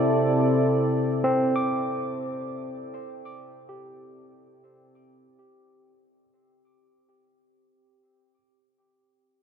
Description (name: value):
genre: ambient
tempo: free time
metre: none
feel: none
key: unclear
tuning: A4 = 440 Hz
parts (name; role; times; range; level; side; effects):
- warm analog pad; sustained chords; 0.0-5.3 s; C3 to D5; -24 LUFS; equal; chorus
- barky tine electric piano; arpeggios; 1.2-8.4 s; C4 to D6; -28 LUFS; right 1 dB; overdrive
room: wet huge ambient reverb, RT60 8.5 s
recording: none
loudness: -22 LUFS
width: side -7 dB against mid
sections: 0.0-5.3 A section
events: fade-out 0.0-5.3; filter sweep on analog synth pad 0.0-5.3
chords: 0.0 Dsus2/C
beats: free time